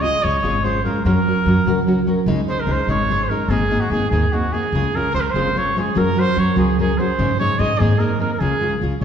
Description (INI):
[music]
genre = mexican folk, mariachi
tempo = 98 BPM (dotted quarters)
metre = 6/8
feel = rubato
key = Db major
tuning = A4 = 440 Hz
[part]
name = clear trumpet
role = melody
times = 0.0-9.0 s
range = Gb4 to Eb5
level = -21 LUFS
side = right 2 dB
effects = none
[part]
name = nylon-string guitar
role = accompaniment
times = 0.0-9.0 s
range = Ab2 to Bb4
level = -19 LUFS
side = equal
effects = none
[part]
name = upright bass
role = bass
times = 0.0-9.0 s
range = Ab1 to Ab2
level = -23 LUFS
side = equal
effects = none
[sound]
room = wet scoring stage reverb, RT60 1.5 s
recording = heard from further back in the room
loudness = -16 LUFS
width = side -8 dB against mid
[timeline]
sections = 0.0-9.0 A section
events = none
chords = 0.0 Db; 1.1 Gb; 2.3 Dbsus2; 3.5 Abadd9; 4.7 Db; 6.0 Gb; 7.2 Absus4; 7.8 Abadd9; 8.4 Db